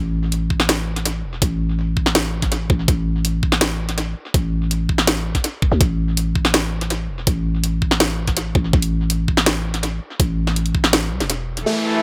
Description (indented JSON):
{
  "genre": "half-time drum and bass",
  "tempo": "164 BPM",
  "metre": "4/4",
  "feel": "half-time",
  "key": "unclear",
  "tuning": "A4 = 440 Hz",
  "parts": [
    { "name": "growling 808-style bass", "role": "bass", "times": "0.0-11.7 s", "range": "E1 to D2", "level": "-23 LUFS", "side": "equal", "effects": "none" },
    { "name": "drum and bass drum kit", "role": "drums", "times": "0.3-11.6 s", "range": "hi-hat, snare drum", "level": "-22 LUFS", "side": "equal", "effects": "low-pass filter on snare, low-pass filter on hats, tape echo" },
    { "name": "electronic kick drum", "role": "drums", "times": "0.5-10.8 s", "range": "none", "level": "-22 LUFS", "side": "equal", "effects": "none" },
    { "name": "rich symphonic cello section", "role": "sustained chords", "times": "11.7-12.0 s", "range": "E3 to A4", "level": "-22 LUFS", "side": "equal", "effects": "sidechain pumping" },
    { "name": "felt-muted upright piano", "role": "arpeggios", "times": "11.7-12.0 s", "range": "A3", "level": "-24 LUFS", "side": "equal", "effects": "low-pass filter, dub echo" },
    { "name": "downlifter", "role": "sound effects", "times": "11.7-12.0 s", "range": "none", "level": "-26 LUFS", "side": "equal", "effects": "none" }
  ],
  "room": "light reverb",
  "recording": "echo-heavy mix",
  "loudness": "-20 LUFS",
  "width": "mono",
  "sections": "0.0-11.7 A section",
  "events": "break 10.9-11.7",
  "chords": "0.0 A5"
}